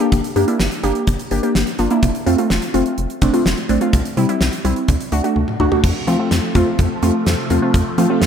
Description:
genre	synth-pop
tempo	126 BPM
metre	4/4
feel	straight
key	unclear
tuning	A4 = 440 Hz
part	warbly dusty pluck	accompaniment	0.0-8.3 s	G3 to G4	-17 LUFS	equal	chorus, phaser
part	gated 80s drum kit	drums	0.0-8.3 s	crash cymbal, hi-hat, kick drum, snare drum, toms	-20 LUFS	equal	none
part	rubbery square bass	bass	0.1-8.3 s	F1 to F3	-20 LUFS	equal	none
part	phased string machine	sustained chords	5.8-8.3 s	C3 to A3	-23 LUFS	left 1 dB	ensemble chorus, phaser
room	moderate lush hall reverb, RT60 2.0 s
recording	rough home demo mix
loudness	-15 LUFS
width	side -8 dB against mid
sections	0.0-5.8 A section; 5.8-8.3 B section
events	drum fill 5.4-5.8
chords	0.0 Gm; 2.0 F; 3.9 C; 4.9 D; 5.8 F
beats	| 0.12 0.60 1.07 1.55 | 2.03 2.50 2.98 3.46 | 3.93 4.41 4.88 5.36 | 5.84 6.31 6.79 7.26 | 7.74 8.22

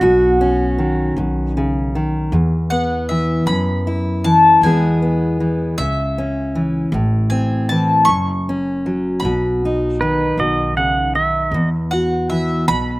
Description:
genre	acoustic folk duo or small band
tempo	52 BPM (dotted quarters)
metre	6/8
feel	straight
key	E major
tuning	A4 = 435 Hz
part	pedal steel guitar	second line	0.0-1.1, 10.0-11.7 s	F#4 to F#5	-18 LUFS	right 2 dB	none
part	fingerpicked steel-string acoustic guitar	accompaniment	0.0-13.0 s	E2 to G#4	-18 LUFS	equal	slapback echo
part	upright bass	bass	0.0-13.0 s	F#1 to F#2	-23 LUFS	equal	none
part	bowl-back mandolin	melody	2.7-13.0 s	E5 to C#6	-17 LUFS	left 2 dB	none
room	little or no reverb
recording	recorded outdoors, with no room sound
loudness	-15 LUFS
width	side -19 dB against mid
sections	0.0-2.3 A section; 2.3-13.0 B section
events	none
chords	0.0 Badd9; 2.3 E5; 3.5 Bsus4/F#; 4.6 E; 5.8 C#m; 6.9 Am; 8.1 F#5; 9.2 B; 11.5 Esus2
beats	| 0.02 1.18 | 2.33 3.48 | 4.63 5.78 | 6.93 8.08 | 9.23 10.38 | 11.54 12.69

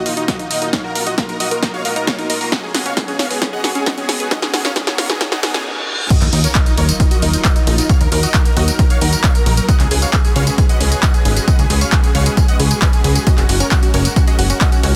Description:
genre	uplifting trance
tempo	134 BPM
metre	4/4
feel	straight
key	Eb minor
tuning	A4 = 444 Hz
part	dense compressed supersaw	melody	0.0-14.9 s	Eb4 to Ab5	-25 LUFS	equal	sidechain pumping, tape echo
part	lush unison pad	sustained chords	0.0-14.9 s	Gb3 to Eb5	-28 LUFS	equal	chorus, phaser, sidechain pumping
part	riser, reverse cymbal and sub drop	sound effects	1.9-7.9 s	none	-31 LUFS	equal	none
part	analog pluck	arpeggios	0.1-5.6, 13.3-14.9 s	Db4 to Gb5	-29 LUFS	equal	chorus, phaser, sidechain pumping, dub echo
part	punchy analog drum machine	drums	0.1-14.9 s	crash cymbal, handclaps, hi-hat, ride cymbal, snare drum, tambourine	-22 LUFS	equal	sidechain pumping on perc, sidechain pumping on hats, sidechain pumping on cymbals
part	electronic kick drum	drums	0.3-14.7 s	none	-17 LUFS	equal	high-pass filter on kick, high-pass filter on room
part	plucky analog bass	bass	6.2-15.0 s	Gb1 to Eb2	-18 LUFS	equal	sidechain pumping
room	light reverb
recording	dense, heavily limited modern master, high-pass filter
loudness	-15 LUFS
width	mono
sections	0.0-6.1 A section; 6.1-15.0 B section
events	build-up 0.0-6.1; drum fill 0.0-5.7; reverse cymbal 5.2-6.1; drop 6.1-15.0; impact 6.1-7.9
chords	0.0 Ebmadd9; 2.5 Db7sus4; 6.1 Ebmadd9; 9.7 Db7sus4; 13.3 Gbadd9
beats	0.28 | 0.73 1.18 1.63 2.07 | 2.52 2.97 3.42 3.87 | 4.31 4.76 5.21 5.66 | 6.10 6.55 7.00 7.45 | 7.89 8.34 8.79 9.24 | 9.69 10.13 10.58 11.03 | 11.48 11.92 12.37 12.82 | 13.27 13.71 14.16 14.61

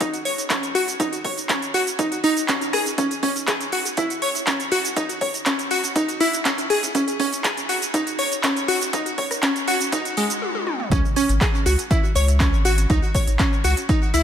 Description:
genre	progressive house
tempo	121 BPM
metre	4/4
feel	straight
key	C# minor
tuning	A4 = 440 Hz
part	glassy wavetable pluck	arpeggios	0.0-14.2 s	G#3 to C#5	-22 LUFS	equal	chorus, cassette tape, sidechain pumping, digital delay
part	big-room dance drum kit	drums	0.0-14.2 s	cabasa, handclaps, hi-hat, rim click, toms	-25 LUFS	right 2 dB	overdrive, sidechain pumping on hats, high-pass filter on hats, sidechain pumping on perc, high-pass filter on perc, high-pass filter on snare, sidechain pumping on toms, high-pass filter on toms, high-pass filter on room
part	electronic kick drum	drums	0.0-14.0 s	none	-24 LUFS	equal	overdrive, high-pass filter on kick, high-pass filter on room
part	round analog bass	bass	0.3-14.2 s	G#1 to C#2	-19 LUFS	equal	sidechain pumping, high-pass filter
room	light reverb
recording	none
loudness	-19 LUFS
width	side -9 dB against mid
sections	0.0-10.9 A section; 10.9-14.2 B section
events	build-up 0.0-10.9; drum fill 10.4-10.9; stop 10.4-10.9; drop 10.9-14.2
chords	0.0 N.C.; 10.9 C#5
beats	0.01 0.50 | 1.00 1.49 1.99 2.49 | 2.98 3.48 3.97 4.47 | 4.96 5.46 5.96 6.45 | 6.95 7.44 7.94 8.44 | 8.93 9.43 9.92 10.42 | 10.92 11.41 11.91 12.40 | 12.90 13.39 13.89

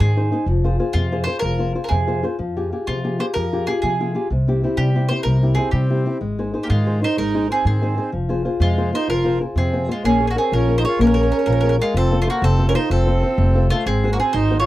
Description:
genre	italian folk, Italian serenade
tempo	126 BPM (dotted quarters)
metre	6/8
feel	straight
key	F minor, Bb minor from 10.0 s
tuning	A4 = 440 Hz
part	bowl-back mandolin	melody	0.0-14.7 s	F4 to Db5	-24 LUFS	right 2 dB	none
part	nylon-string guitar	accompaniment	0.0-14.7 s	C3 to G5	-22 LUFS	left 3 dB	none
part	upright bass	bass	0.0-14.7 s	F1 to F3	-20 LUFS	equal	none
part	accordion	second line	5.6-14.7 s	Ab3 to F4	-23 LUFS	right 4 dB	none
room	little or no reverb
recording	dry, close 1970s-style studio recording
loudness	-17 LUFS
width	side -15 dB against mid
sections	0.0-2.4 A section; 2.4-10.0 A section; 10.0-14.7 B section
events	none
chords	0.5 Fm; 2.4 Fmadd9; 4.3 C; 6.2 Ab; 8.1 Fm; 10.0 Bbm7; 12.0 F; 13.9 Ab7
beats	0.00 | 0.48 0.95 | 1.43 1.91 | 2.39 2.87 | 3.35 3.83 | 4.30 4.78 | 5.25 5.73 | 6.22 6.70 | 7.18 7.66 | 8.13 8.61 | 9.08 9.56 | 10.04 10.52 | 11.00 11.47 | 11.95 12.43 | 12.90 13.38 | 13.87 14.35

